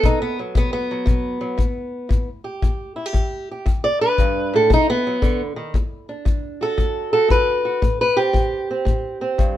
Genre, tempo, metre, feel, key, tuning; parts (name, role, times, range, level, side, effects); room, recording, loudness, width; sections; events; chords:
acoustic country blues, solo or duo; 116 BPM; 4/4; swing 67% on 8ths; E minor; A4 = 438 Hz
fingerpicked old ladder-braced acoustic guitar; melody; 0.0-9.6 s; E2 to D5; -20 LUFS; right 1 dB
kick drum; drums; 0.0-9.5 s; -19 LUFS; left 2 dB
light reverb; minimal, uncompressed stereo recording; -18 LUFS; side -12 dB against mid
0.0-5.7 A section; 5.7-9.6 A section
steel-string acoustic guitar solo 0.0-9.6
0.0 B5; 1.6 Asus2; 3.7 Em7; 4.7 B; 5.7 Esus2; 7.8 Am7